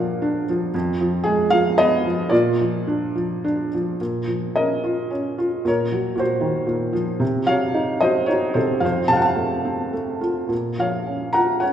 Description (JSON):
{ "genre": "classical, lyrical solo piano", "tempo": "103-120 BPM", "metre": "3/4", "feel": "rubato", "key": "Bb harmonic minor from 4.0 s", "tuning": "A4 = 444 Hz", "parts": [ { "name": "felt-muted upright piano", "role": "solo", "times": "0.0-11.7 s", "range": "F2 to Bb5", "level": "-19 LUFS", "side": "equal", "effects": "none" } ], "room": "wet concert hall reverb, RT60 1.9 s", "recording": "recorded in a church or concert hall", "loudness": "-19 LUFS", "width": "side -9 dB against mid", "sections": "0.0-4.0 A section; 4.0-11.7 B section", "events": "none", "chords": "0.0 Bb; 0.7 Fdim; 2.3 Bb; 4.0 Bbm; 5.6 Ebmadd9/Bb; 7.2 Cdim; 8.8 F; 10.5 Bbm", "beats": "0.23 | 0.75 1.26 1.78 | 2.31 2.87 3.44 | 4.00 4.56 5.11 | 5.65 6.17 6.68 | 7.21 7.75 8.30 | 8.84 9.39 9.95 | 10.52 11.08 11.64" }